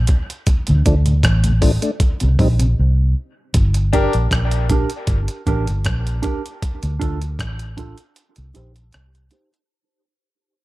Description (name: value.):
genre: dub reggae.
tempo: 78 BPM.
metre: 4/4.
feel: straight.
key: G minor.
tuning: A4 = 440 Hz.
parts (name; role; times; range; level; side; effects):
vintage muted fingered electric bass; bass; 0.0-9.3 s; G1 to D2; -17 LUFS; equal; none.
mellow tonewheel organ; accompaniment; 0.1-2.7 s; D2 to Eb4; -22 LUFS; left 1 dB; overdrive, chorus vibrato, slow rotary speaker, high-pass filter, low-pass filter.
breakbeat sampler-style drum kit; drums; 0.1-9.7 s; hi-hat, kick drum, rim click; -19 LUFS; equal; none.
mellow electric guitar; accompaniment; 3.9-9.6 s; D4 to C5; -26 LUFS; right 6 dB; high-pass filter, low-pass filter, dub echo.
bright concert grand piano; stabs; 3.9-4.1 s; D4 to Bb4; -25 LUFS; left 5 dB; high-pass filter, low-pass filter, dub echo.
room: little or no reverb.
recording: none.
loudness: -16 LUFS.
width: side -18 dB against mid.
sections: 0.0-3.5 A section; 3.5-9.7 B section.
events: break 0.0-3.5, 3.5-9.7; fade-out 3.5-9.7; filter sweep 3.5-9.7.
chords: 0.5 Dm; 2.0 Cm; 3.5 Gm; 6.6 Dm; 8.2 Cm.